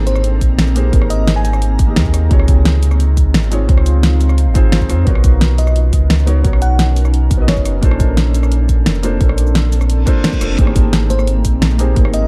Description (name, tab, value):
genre	liquid drum and bass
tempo	174 BPM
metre	4/4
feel	straight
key	Ab major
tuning	A4 = 444 Hz
part	felt-muted upright piano	accompaniment	0.0-12.3 s	C3 to Eb5	-25 LUFS	equal	vintage 12-bit sampler grit, dub echo
part	shimmering ambient pad	sustained chords	0.0-12.3 s	Bb3 to Bb5	-28 LUFS	equal	chorus, built-in reverb, sidechain pumping
part	sub bass with octave	bass	0.0-12.3 s	F1 to F2	-16 LUFS	equal	tube saturation
part	bell-like FM electric piano	melody	0.1-1.8, 5.6-7.9, 11.1-12.3 s	C5 to Ab5	-27 LUFS	equal	chorus, dub echo
part	pop drum kit	drums	0.1-12.2 s	cabasa, hi-hat, rim click, snare drum	-21 LUFS	equal	none
part	electronic kick drum	drums	0.4-12.0 s	none	-16 LUFS	equal	none
part	reverse cymbal	sound effects	10.0-10.6 s	none	-32 LUFS	equal	none
part	congas	percussion	10.6-12.3 s	none	-28 LUFS	equal	none
room	little or no reverb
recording	dark, warm production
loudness	-13 LUFS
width	mono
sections	0.0-12.3 A section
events	reverse cymbal 10.0-10.6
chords	0.0 Abmaj9; 2.3 Dbmaj9; 5.1 Bmaj9; 7.8 Bbmaj9; 10.6 Abmaj9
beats	0.24 0.58 | 0.93 1.27 1.62 1.97 | 2.31 2.65 3.00 3.34 | 3.69 4.03 4.38 4.72 | 5.07 5.41 5.76 6.10 | 6.45 6.79 7.14 7.48 | 7.83 8.17 8.52 8.86 | 9.21 9.55 9.90 10.24 | 10.59 10.93 11.28 11.62 | 11.96